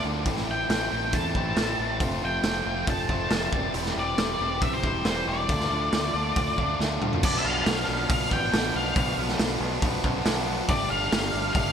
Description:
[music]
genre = indie rock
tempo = 138 BPM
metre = 4/4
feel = straight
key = unclear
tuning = A4 = 440 Hz
[part]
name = octave-fuzz lead guitar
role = melody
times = 0.0-11.7 s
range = C5 to A5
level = -29 LUFS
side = left 1 dB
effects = distortion, ping-pong delay
[part]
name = fuzz guitar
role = riff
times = 0.0-11.7 s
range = A2 to G4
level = -29 LUFS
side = equal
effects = distortion
[part]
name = growling fingered electric bass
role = bass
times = 0.0-11.7 s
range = E1 to E2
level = -33 LUFS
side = equal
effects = overdrive
[part]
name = raw garage drum kit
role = drums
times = 0.3-11.7 s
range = crash cymbal, hi-hat, kick drum, snare drum, toms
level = -27 LUFS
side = equal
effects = gated reverb
[sound]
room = moderate plate reverb, RT60 2.3 s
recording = bright 1980s-style digital production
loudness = -23 LUFS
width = side -8 dB against mid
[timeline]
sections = 0.0-7.2 A section; 7.2-11.7 B section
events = drum fill 6.8-7.2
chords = 0.3 Am; 2.0 F; 3.5 Cadd9/E; 5.5 Dm; 7.2 Bdim; 10.7 Gsus2

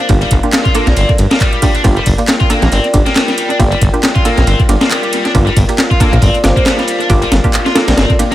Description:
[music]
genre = breakbeat, breaks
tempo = 137 BPM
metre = 4/4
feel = swing 56% on 16ths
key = G minor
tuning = A4 = 441 Hz
[part]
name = dark analog pad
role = sustained chords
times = 0.0-8.3 s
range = F4 to G5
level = -21 LUFS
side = left 2 dB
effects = chorus, sidechain pumping
[part]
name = high-gain distorted guitar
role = riff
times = 0.0-8.3 s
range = G3 to F4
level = -18 LUFS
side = left 1 dB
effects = distortion, vintage 12-bit sampler grit, tape echo
[part]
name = filtered dub chord stab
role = stabs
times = 0.0-8.3 s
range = Bb3 to A4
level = -19 LUFS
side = right 2 dB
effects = chorus, tape echo
[part]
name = detuned saw bass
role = bass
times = 0.1-8.1 s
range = G1 to Bb1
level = -12 LUFS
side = equal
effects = none
[part]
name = breakbeat sampler-style drum kit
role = drums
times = 0.1-8.3 s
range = hi-hat, kick drum, ride cymbal, snare drum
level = -13 LUFS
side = equal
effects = tape echo
[part]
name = house drum kit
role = drums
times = 0.1-8.3 s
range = handclaps, hi-hat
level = -21 LUFS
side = right 1 dB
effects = tape echo
[part]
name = vibraphone with soft mallets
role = melody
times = 0.9-8.1 s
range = C5 to D5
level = -22 LUFS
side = right 1 dB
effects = small speaker sound, vintage 12-bit sampler grit, tape echo
[sound]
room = light reverb, digital ambience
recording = echo-heavy mix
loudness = -9 LUFS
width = side -14 dB against mid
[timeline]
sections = 0.0-8.3 A section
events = none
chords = 0.0 Gm7

